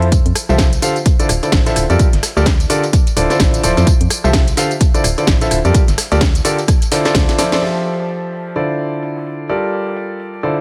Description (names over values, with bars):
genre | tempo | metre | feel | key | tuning
piano house | 128 BPM | 4/4 | swing 59% on 16ths | D minor | A4 = 440 Hz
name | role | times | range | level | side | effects
clear concert grand piano | riff | 0.0-10.6 s | D3 to F5 | -20 LUFS | equal | sidechain pumping, low-pass filter, delay
organ-like FM bass | bass | 0.0-7.3 s | D1 to F2 | -19 LUFS | equal | sidechain pumping
house drum kit | drums | 0.0-7.6 s | hi-hat, rim click, snare drum, tambourine | -23 LUFS | equal | none
dusty soul sampler-style drum kit | drums | 0.1-10.6 s | hi-hat, snare drum | -32 LUFS | equal | sidechain pumping on hats, high-pass filter on hats, low-pass filter on hats, high-pass filter on snare, low-pass filter on snare
electronic kick drum | drums | 0.1-7.3 s | none | -16 LUFS | equal | none
room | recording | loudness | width
little or no reverb | none | -15 LUFS | mono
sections
0.0-7.6 A section; 7.6-10.6 B section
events
drum fill 7.3-7.6; band accent 7.5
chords
0.1 Fmaj9; 1.1 Dm9; 2.0 Gm9; 2.9 Dm9; 3.9 Fmaj9; 4.8 Dm9; 5.7 Gm9; 6.7 Dm9; 7.6 Fmaj9; 8.6 Dm9; 9.5 Gm9